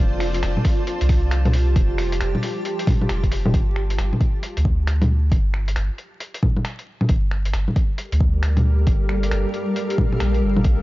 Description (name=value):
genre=future garage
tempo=135 BPM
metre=4/4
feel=swing 63% on 16ths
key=G minor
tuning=A4 = 441 Hz
part: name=granular cloud pad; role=sustained chords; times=0.0-3.5, 8.3-10.8 s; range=G3 to A5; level=-26 LUFS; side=equal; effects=built-in reverb, sidechain pumping
part: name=soft dub sub bass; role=bass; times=0.0-10.8 s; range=F1 to D2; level=-20 LUFS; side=equal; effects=sidechain pumping
part: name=lo-fi sampler-style drum kit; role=drums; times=0.2-10.8 s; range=bongos, finger snaps, hi-hat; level=-25 LUFS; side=equal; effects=none
part: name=electronic kick drum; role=drums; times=0.6-10.8 s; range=none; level=-19 LUFS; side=equal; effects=none
room=digital ambience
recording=dry, gritty hardware recording, vinyl crackle, nothing above 7.5 kHz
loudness=-18 LUFS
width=side -18 dB against mid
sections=0.0-3.5 A section; 3.5-10.8 B section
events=none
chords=0.0 Fadd9; 3.5 Gm7